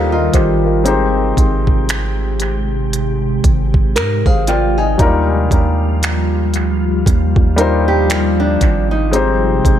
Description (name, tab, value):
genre	contemporary R&B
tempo	58 BPM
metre	4/4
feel	swing 58% on 16ths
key	Eb major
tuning	A4 = 442 Hz
part	dark grand piano	accompaniment	0.0-9.8 s	Gb3 to Ab5	-18 LUFS	left 4 dB	analog delay
part	glassy FM pad	sustained chords	0.0-9.8 s	C3 to G4	-21 LUFS	equal	ensemble chorus, built-in reverb
part	nylon-string guitar	arpeggios	0.0-9.4 s	D4 to Bb4	-19 LUFS	right 3 dB	analog delay
part	long sustained 808-style bass	bass	0.0-9.8 s	Ab1 to Ab2	-17 LUFS	right 1 dB	none
part	smooth R&B drum kit	drums	0.3-9.8 s	finger snaps, hi-hat, kick drum	-16 LUFS	right 1 dB	analog delay
room	light reverb, digital ambience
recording	echo-heavy mix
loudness	-12 LUFS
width	side -10 dB against mid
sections	0.0-9.8 A section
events	none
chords	0.0 Ebmaj9; 0.9 Abmaj7